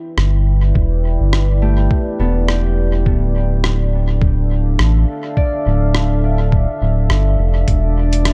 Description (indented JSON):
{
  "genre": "ambient dub",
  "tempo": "104 BPM",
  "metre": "4/4",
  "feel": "swing 56% on 16ths",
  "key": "D dorian",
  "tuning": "A4 = 440 Hz",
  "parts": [
    { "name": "deep dark ambient pad", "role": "sustained chords", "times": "0.0-8.3 s", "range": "D4 to G5", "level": "-26 LUFS", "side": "equal", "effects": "chorus, built-in reverb" },
    { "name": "round analog bass", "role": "bass", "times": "0.2-8.3 s", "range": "D1 to A1", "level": "-17 LUFS", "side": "equal", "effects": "none" },
    { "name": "lo-fi sampler-style drum kit", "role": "drums", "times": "0.2-8.3 s", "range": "hi-hat, rim click", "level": "-25 LUFS", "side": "equal", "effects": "small room reverb, dub echo" },
    { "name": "electronic kick drum", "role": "drums", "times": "0.8-7.8 s", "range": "none", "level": "-18 LUFS", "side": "equal", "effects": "small room reverb" },
    { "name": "Celtic harp", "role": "arpeggios", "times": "1.6-7.2 s", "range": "A3 to D5", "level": "-28 LUFS", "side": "equal", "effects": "dub echo" },
    { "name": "drifting glass-harmonics texture", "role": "texture", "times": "7.9-8.3 s", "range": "D4 to D5", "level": "-26 LUFS", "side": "equal", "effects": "chorus, built-in reverb" }
  ],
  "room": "little or no reverb",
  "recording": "dark, warm production",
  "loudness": "-16 LUFS",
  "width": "mono",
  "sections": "0.0-8.3 A section",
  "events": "none",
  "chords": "0.0 Em7; 3.1 Dmadd9; 7.7 E7(no3)",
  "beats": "0.18 | 0.76 1.33 1.91 2.49 | 3.06 3.64 4.22 4.79 | 5.37 5.95 6.53 7.10 | 7.68 8.26"
}